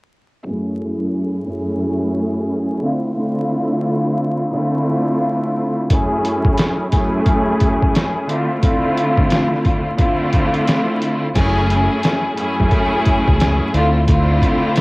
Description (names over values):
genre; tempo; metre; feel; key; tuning
hip hop, boom-bap hip-hop; 88 BPM; 4/4; swing 62% on 16ths; F# minor; A4 = 441 Hz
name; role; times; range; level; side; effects
clear studio string section; accompaniment; 0.4-14.8 s; F#2 to G#4; -17 LUFS; equal; high-pass filter, low-pass filter
trip hop sampler-style drum kit; drums; 5.9-14.8 s; crash cymbal, hi-hat, kick drum, snare drum; -18 LUFS; equal; overdrive, cassette tape
deep dub fingered electric bass; bass; 11.4-14.4 s; F#1 to D2; -17 LUFS; equal; tube saturation
room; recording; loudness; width
light reverb, digital ambience; home recording on cassette, vinyl crackle; -15 LUFS; side -23 dB against mid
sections
0.4-11.4 A section; 11.4-14.8 B section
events
filter sweep on string section 0.4-11.4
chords
0.4 F#m7; 2.8 Dm7; 5.9 F#m7; 8.3 Dm7; 11.4 F#m7; 13.7 Dm7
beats
| 0.45 1.13 1.81 2.49 | 3.17 3.86 4.54 5.22 | 5.90 6.58 7.26 7.95 | 8.63 9.31 9.99 10.67 | 11.36 12.04 12.72 13.40 | 14.08 14.77